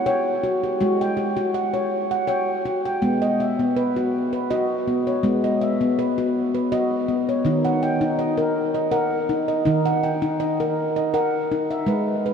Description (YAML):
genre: world meditative, meditative tuned percussion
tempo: 81 BPM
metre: 3/4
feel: straight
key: unclear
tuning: A4 = 441 Hz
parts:
  - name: handpan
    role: solo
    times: 0.0-12.3 s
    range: D#3 to G5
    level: -20 LUFS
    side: equal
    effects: diffuse ambient delay
room: wet huge ambient reverb, RT60 7.3 s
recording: in a vast, echoing space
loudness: -20 LUFS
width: side -6 dB against mid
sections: 0.0-11.9 A section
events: none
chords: 0.0 F#5/G#; 3.0 B/G#; 7.4 D#m